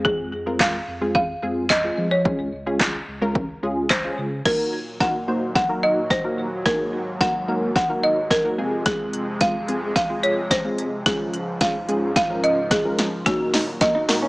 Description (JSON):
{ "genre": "dance-pop", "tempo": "109 BPM", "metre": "4/4", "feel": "straight", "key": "Eb dorian", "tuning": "A4 = 439 Hz", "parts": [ { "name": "folk marimba with hard mallets", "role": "melody", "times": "0.0-14.3 s", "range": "Gb4 to Gb5", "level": "-22 LUFS", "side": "equal", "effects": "tape echo" }, { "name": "funky polysynth comp", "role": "accompaniment", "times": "0.0-14.3 s", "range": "Ab3 to C5", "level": "-26 LUFS", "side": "equal", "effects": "chorus, sidechain pumping" }, { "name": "saturated sub bass", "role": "bass", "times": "0.0-4.4 s", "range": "Db2 to F3", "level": "-32 LUFS", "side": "equal", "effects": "sidechain pumping" }, { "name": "deep house drum kit", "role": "drums", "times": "0.1-14.2 s", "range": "crash cymbal, handclaps, hi-hat, kick drum, snare drum", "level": "-23 LUFS", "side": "equal", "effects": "none" }, { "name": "soft supersaw", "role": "sustained chords", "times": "4.5-14.3 s", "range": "Db2 to Ab3", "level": "-31 LUFS", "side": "equal", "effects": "sidechain pumping" }, { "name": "electric guitar through a small old amp", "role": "riff", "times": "13.3-14.3 s", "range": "Db4 to Eb4", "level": "-27 LUFS", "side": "right 1 dB", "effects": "wide subtle chorus" } ], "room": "light reverb, digital ambience", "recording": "small speaker sound", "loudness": "-19 LUFS", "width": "side -22 dB against mid", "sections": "0.0-4.5 A section; 4.5-14.3 B section", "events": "build-up 4.5-14.3; drum fill 4.5-14.3", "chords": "0.0 Fm; 2.3 Db; 4.5 Ebm; 8.6 Fm; 11.1 Db; 13.3 Ebm", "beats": "| 0.05 0.60 1.15 1.70 | 2.25 2.80 3.35 3.90 | 4.45 5.00 5.55 6.11 | 6.66 7.21 7.76 8.31 | 8.86 9.41 9.96 10.51 | 11.06 11.61 12.16 12.71 | 13.26 13.81" }